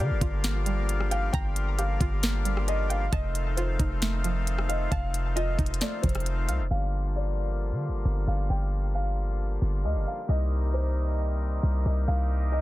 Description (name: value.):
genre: hip hop, atmospheric cloud-rap.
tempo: 134 BPM.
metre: 4/4.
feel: half-time.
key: G minor.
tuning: A4 = 440 Hz.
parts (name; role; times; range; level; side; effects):
felt-muted upright piano; melody; 0.0-12.6 s; C5 to G5; -36 LUFS; equal; ping-pong delay.
accordion; sustained chords; 0.0-12.6 s; C3 to F4; -35 LUFS; left 3 dB; sidechain pumping.
string-like resonator pluck; arpeggios; 0.0-6.7 s; F3 to Bb5; -38 LUFS; right 4 dB; chorus, ping-pong delay.
warm 808-style bass; bass; 0.0-12.6 s; F1 to D3; -27 LUFS; equal; none.
trap drum kit; drums; 0.2-6.6 s; hi-hat, kick drum, rim click, snare drum; -29 LUFS; equal; soft clipping on snare.
room: little or no reverb.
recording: dense, heavily limited modern master, low-pass filter.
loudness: -25 LUFS.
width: side -16 dB against mid.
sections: 0.0-6.7 A section; 6.7-12.6 B section.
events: filter sweep 6.7-12.6.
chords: 0.0 Gm7; 3.1 F7; 6.7 Gm7; 10.3 Cm7.